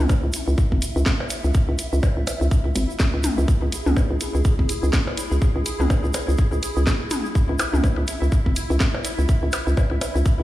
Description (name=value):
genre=minimal techno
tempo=124 BPM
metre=4/4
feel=swing 58% on 16ths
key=C# minor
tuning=A4 = 440 Hz
part: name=hollow knocking FM bass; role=bass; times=0.0-10.4 s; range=G#1 to C#2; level=-21 LUFS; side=equal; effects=sidechain pumping
part: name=pulsing gated texture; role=texture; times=0.0-10.4 s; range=E4 to E5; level=-31 LUFS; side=equal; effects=chorus, built-in reverb, sidechain pumping
part: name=electronic kick drum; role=drums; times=0.1-10.4 s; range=none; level=-19 LUFS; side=equal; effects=none
part: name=egg shaker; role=percussion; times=0.1-10.4 s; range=none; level=-35 LUFS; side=right 3 dB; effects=none
part: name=electronic percussion blips and toms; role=percussion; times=0.1-10.1 s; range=none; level=-28 LUFS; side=left 1 dB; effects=overdrive, ping-pong delay
part: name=garage drum kit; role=drums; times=0.3-10.1 s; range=hi-hat, snare drum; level=-28 LUFS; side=equal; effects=none
room=little or no reverb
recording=played on a big sound system in a bare room, stone room reverb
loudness=-19 LUFS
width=side -15 dB against mid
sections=0.0-10.4 A section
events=none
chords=0.0 C#m